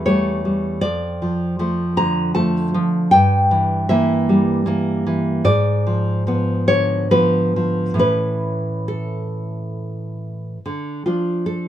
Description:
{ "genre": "romantic piece for solo classical guitar", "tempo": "67-79 BPM", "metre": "3/4", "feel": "rubato", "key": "D minor", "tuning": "A4 = 440 Hz", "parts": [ { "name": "nylon-string guitar", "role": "solo", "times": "0.0-11.7 s", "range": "E2 to Bb5", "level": "-17 LUFS", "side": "equal", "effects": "none" } ], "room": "light reverb", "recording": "minimal, uncompressed stereo recording", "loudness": "-16 LUFS", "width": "side -11 dB against mid", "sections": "0.0-10.6 A section; 10.6-11.7 B section", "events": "none", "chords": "0.0 A7/E; 0.8 Dm/F; 3.1 Edim/G; 5.5 G#dim7; 8.0 A; 10.6 Dm" }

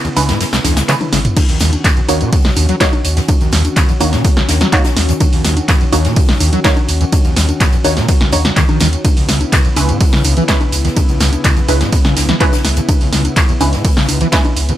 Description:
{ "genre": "acid house", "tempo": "125 BPM", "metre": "4/4", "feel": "straight", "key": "Eb phrygian", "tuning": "A4 = 441 Hz", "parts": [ { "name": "warm analog pad", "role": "sustained chords", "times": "0.0-14.8 s", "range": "Db3 to Gb4", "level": "-23 LUFS", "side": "left 2 dB", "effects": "lush chorus, sidechain pumping" }, { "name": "overdriven acid bass", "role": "riff", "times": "0.0-14.7 s", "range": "Cb2 to Gb3", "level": "-18 LUFS", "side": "equal", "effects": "distortion, ensemble chorus, vintage 12-bit sampler grit, sidechain pumping" }, { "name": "punchy analog drum machine", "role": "drums", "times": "0.0-14.8 s", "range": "congas, crash cymbal, handclaps, hi-hat, ride cymbal, snare drum, tambourine, toms", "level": "-17 LUFS", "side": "equal", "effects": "none" }, { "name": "unplugged drum kit", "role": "drums", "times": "0.0-14.4 s", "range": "hi-hat, snare drum", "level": "-27 LUFS", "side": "left 3 dB", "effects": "high-pass filter on hats, high-pass filter on snare, high-pass filter on room" }, { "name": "filtered dub chord stab", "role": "stabs", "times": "0.2-14.5 s", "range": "Ab3 to Db5", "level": "-21 LUFS", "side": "right 2 dB", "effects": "phaser, dub echo" }, { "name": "warm sub bass", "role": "bass", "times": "0.2-14.7 s", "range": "Ab1 to Eb2", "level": "-16 LUFS", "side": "equal", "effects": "tube saturation, sidechain pumping" }, { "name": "electronic kick drum", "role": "drums", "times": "1.4-14.4 s", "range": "none", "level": "-13 LUFS", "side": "equal", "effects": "none" } ], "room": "little or no reverb", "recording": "none", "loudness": "-10 LUFS", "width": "side -13 dB against mid", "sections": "0.0-14.8 A section", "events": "break 0.0-1.4; drum fill 0.9-1.4", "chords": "0.0 Dbm7; 1.4 Ebm7; 9.0 Dbm7" }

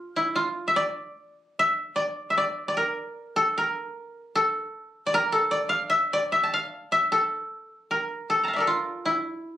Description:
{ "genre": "japanese traditional, Japanese chamber music", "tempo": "76 BPM", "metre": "4/4", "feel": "rubato", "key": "D hirajoshi", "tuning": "A4 = 440 Hz", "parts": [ { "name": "koto", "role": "solo", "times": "0.0-9.6 s", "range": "E4 to Bb5", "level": "-23 LUFS", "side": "equal", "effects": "none" } ], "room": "light reverb", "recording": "recorded on a phone in the room, club reverb", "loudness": "-23 LUFS", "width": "side -12 dB against mid", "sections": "0.0-9.6 A section", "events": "none", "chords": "none" }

